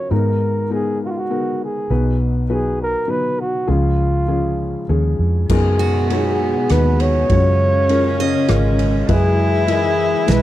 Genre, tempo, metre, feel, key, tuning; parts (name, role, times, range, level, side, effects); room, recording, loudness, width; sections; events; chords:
acoustic folk-pop ballad; 100 BPM; 3/4; straight; A4 = 438 Hz
breathy flugelhorn; melody; 0.0-10.4 s; E#4 to C#5; -21 LUFS; right 1 dB
felt-muted upright piano; accompaniment; 0.0-10.4 s; F#1 to D#5; -22 LUFS; left 4 dB
vintage muted fingered electric bass; bass; 0.1-10.4 s; G#1 to G#2; -18 LUFS; right 1 dB
warm cello; second line; 5.5-10.4 s; B3 to E4; -22 LUFS; left 3 dB
sweeping resonant pad; sustained chords; 5.5-10.4 s; B2 to E#5; -26 LUFS; right 2 dB; chorus
loose indie drum kit; drums; 5.5-10.4 s; crash cymbal, kick drum, ride cymbal, rim click, snare drum; -26 LUFS; equal
picked steel-string acoustic guitar; arpeggios; 5.8-10.4 s; G#3 to D#5; -25 LUFS; right 9 dB
small room ambience; -15 LUFS; side -14 dB against mid
0.0-5.5 A section; 5.5-10.4 B section
0.1 G#madd9; 1.9 B; 3.7 C#; 5.5 G#madd9/F#; 7.3 C#/F#; 9.1 Emaj7/F#